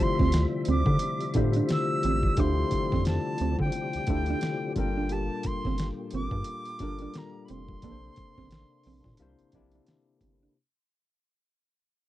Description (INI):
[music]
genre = R&B, neo-soul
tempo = 88 BPM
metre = 4/4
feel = swing 59% on 16ths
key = G dorian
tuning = A4 = 441 Hz
[part]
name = silver concert flute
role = melody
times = 0.0-9.5 s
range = G5 to E6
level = -34 LUFS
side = right 1 dB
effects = none
[part]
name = mellow electric guitar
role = second line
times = 0.0-10.5 s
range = Bb3 to G4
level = -32 LUFS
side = right 8 dB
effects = none
[part]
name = barky tine electric piano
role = accompaniment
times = 0.0-10.6 s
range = C3 to C5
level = -32 LUFS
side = left 5 dB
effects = none
[part]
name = percussive tonewheel organ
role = sustained chords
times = 0.0-10.5 s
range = Bb2 to E5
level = -38 LUFS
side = right 1 dB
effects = slow rotary speaker, chorus vibrato
[part]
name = rubbery square bass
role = bass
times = 0.2-10.5 s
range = F1 to D3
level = -28 LUFS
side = equal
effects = none
[part]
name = dusty soul sampler-style drum kit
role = drums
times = 0.2-10.4 s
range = hi-hat, kick drum, snare drum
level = -30 LUFS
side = equal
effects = overdrive
[sound]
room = little or no reverb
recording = dry, close 1970s-style studio recording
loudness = -25 LUFS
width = side -14 dB against mid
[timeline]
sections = 0.0-10.6 A section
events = fade-out 0.0-10.6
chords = 0.0 Dm11; 4.8 Gm9; 7.8 Bbmaj9; 9.2 C9